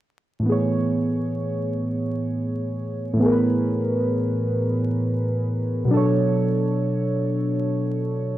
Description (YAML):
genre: hip hop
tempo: free time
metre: none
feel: none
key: A major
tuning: A4 = 440 Hz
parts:
  - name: muted felt-like synth keys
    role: accompaniment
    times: 0.4-8.4 s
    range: A2 to C#5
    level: -20 LUFS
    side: equal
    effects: chorus
room: moderate small room reverb, RT60 0.5 s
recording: vinyl crackle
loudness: -20 LUFS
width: side -14 dB against mid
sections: 0.5-8.4 A section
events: none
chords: 0.5 Amaj7; 5.9 Bm9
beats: free time